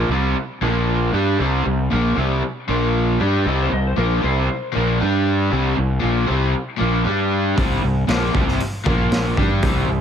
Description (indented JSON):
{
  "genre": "classic rock",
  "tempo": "116 BPM",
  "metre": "4/4",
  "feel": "straight",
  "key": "unclear",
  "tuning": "A4 = 440 Hz",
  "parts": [
    { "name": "overdriven electric guitar", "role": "riff", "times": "0.0-10.0 s", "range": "Bb2 to G4", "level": "-22 LUFS", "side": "left 10 dB", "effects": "none" },
    { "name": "raw garage guitar", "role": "riff", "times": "0.0-10.0 s", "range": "Bb2 to G4", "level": "-23 LUFS", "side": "right 12 dB", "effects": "overdrive" },
    { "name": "fuzz fingered electric bass", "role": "bass", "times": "0.0-10.0 s", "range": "Bb1 to G2", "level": "-21 LUFS", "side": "equal", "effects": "overdrive" },
    { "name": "clean lap steel guitar", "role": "second line", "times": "3.5-5.7 s", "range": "Bb4 to Eb5", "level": "-28 LUFS", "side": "left 5 dB", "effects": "analog delay" },
    { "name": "raw garage drum kit", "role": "drums", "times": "7.6-9.8 s", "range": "hi-hat, kick drum, snare drum", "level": "-21 LUFS", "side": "equal", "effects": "none" }
  ],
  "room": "studio reverb",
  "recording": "none",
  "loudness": "-17 LUFS",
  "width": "side -8 dB against mid",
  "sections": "0.0-10.0 A section",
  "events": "none",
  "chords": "0.0 C5; 0.6 Bb5; 1.1 C5; 2.7 Bb5; 3.2 C5; 5.0 G5; 5.5 C5; 7.1 G5; 7.6 C5; 8.9 Bb5; 9.4 C5"
}